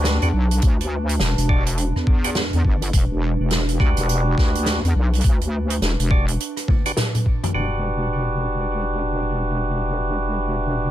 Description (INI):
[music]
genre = glitch hop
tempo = 104 BPM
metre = 4/4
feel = swing 61% on 16ths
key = E minor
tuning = A4 = 441 Hz
[part]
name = percussive tonewheel organ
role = stabs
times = 0.0-10.9 s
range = D4 to D5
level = -26 LUFS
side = right 1 dB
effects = overdrive, stopped rotary speaker, sidechain pumping, dub echo
[part]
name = wobble bass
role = bass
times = 0.0-10.9 s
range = E1 to E2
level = -21 LUFS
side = equal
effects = chorus, tube saturation
[part]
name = unplugged drum kit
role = drums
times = 0.0-7.5 s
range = hi-hat, rim click, snare drum, toms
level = -25 LUFS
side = right 1 dB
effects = low-pass filter on hats, low-pass filter on toms, low-pass filter on snare, low-pass filter on room
[part]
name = warbly tape-like pad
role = texture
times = 0.0-10.9 s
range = D4 to A5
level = -32 LUFS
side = right 2 dB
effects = chorus, built-in reverb, sidechain pumping
[part]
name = electronic kick drum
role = drums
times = 0.6-7.4 s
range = none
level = -18 LUFS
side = equal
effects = none
[sound]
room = little or no reverb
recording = none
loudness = -18 LUFS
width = side -12 dB against mid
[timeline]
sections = 0.0-7.5 A section; 7.5-10.9 B section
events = drum fill 6.7-7.5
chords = 0.0 Em7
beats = 0.05 | 0.63 1.20 1.78 2.36 | 2.93 3.51 4.09 4.66 | 5.24 5.82 6.39 6.97 | 7.55 8.13 8.70 9.28 | 9.86 10.43